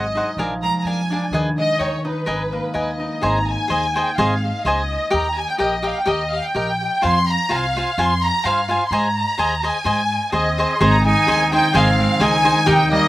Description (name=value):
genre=mexican folk, mariachi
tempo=127 BPM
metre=2/4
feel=straight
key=Ab major from 3.2 s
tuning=A4 = 442 Hz
part: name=warm symphonic violin section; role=melody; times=0.0-13.1 s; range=B4 to C6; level=-20 LUFS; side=equal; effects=none
part: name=cavaquinho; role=accompaniment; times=0.0-12.8 s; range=D4 to A#5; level=-21 LUFS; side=equal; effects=slapback echo
part: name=concert harp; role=arpeggios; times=0.0-5.7, 10.8-13.1 s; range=D#3 to D#4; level=-23 LUFS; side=equal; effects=none
part: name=upright bass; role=bass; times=0.0-13.0 s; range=G#1 to Ab2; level=-24 LUFS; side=equal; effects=none
part: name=warm trumpet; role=second line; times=10.3-13.1 s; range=Bb3 to Ab4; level=-22 LUFS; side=right 3 dB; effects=slapback echo
room=little or no reverb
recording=recorded outdoors, with no room sound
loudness=-16 LUFS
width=side -16 dB against mid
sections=0.0-3.2 A section; 3.2-10.8 B section; 10.8-13.1 B section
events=none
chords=0.4 A#7; 1.3 G#m/D#; 1.8 D#7; 2.3 G#madd9; 3.2 Ab; 5.1 Eb; 7.0 Fm; 8.9 Ab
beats=| 0.37 0.85 | 1.33 1.80 | 2.27 2.75 | 3.23 3.71 | 4.18 4.66 | 5.13 5.60 | 6.07 6.55 | 7.03 7.51 | 7.98 8.45 | 8.92 9.39 | 9.86 10.33 | 10.80 11.28 | 11.74 12.21 | 12.67